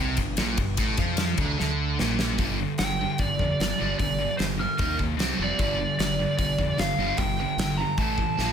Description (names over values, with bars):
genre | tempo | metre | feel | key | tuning
hard rock | 150 BPM | 4/4 | straight | G minor | A4 = 436 Hz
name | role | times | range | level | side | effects
scooped high-gain guitar | riff | 0.0-8.5 s | G2 to Eb4 | -31 LUFS | left 11 dB | distortion
sludgy distorted guitar | riff | 0.0-8.5 s | G2 to Eb4 | -30 LUFS | right 9 dB | overdrive
growling fingered electric bass | bass | 0.0-8.5 s | F1 to F2 | -31 LUFS | left 1 dB | overdrive
gated 80s drum kit | drums | 0.2-8.5 s | hi-hat, kick drum, ride cymbal, snare drum | -28 LUFS | equal | none
nasal lead guitar with a parked wah | melody | 2.8-8.5 s | Bb4 to Bb5 | -28 LUFS | right 1 dB | overdrive, slapback echo
room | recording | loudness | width
light reverb, small room ambience | none | -23 LUFS | side -8 dB against mid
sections
0.0-2.4 A section; 2.4-8.5 B section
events
drum fill 1.6-2.4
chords
0.0 Gm; 2.4 G5; 4.8 Eb5; 5.2 C5; 5.6 G5; 8.0 A5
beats
0.39 | 0.79 1.19 1.59 1.99 | 2.39 2.79 3.19 3.59 | 3.99 4.38 4.79 5.18 | 5.58 5.98 6.38 6.78 | 7.18 7.58 7.98 8.38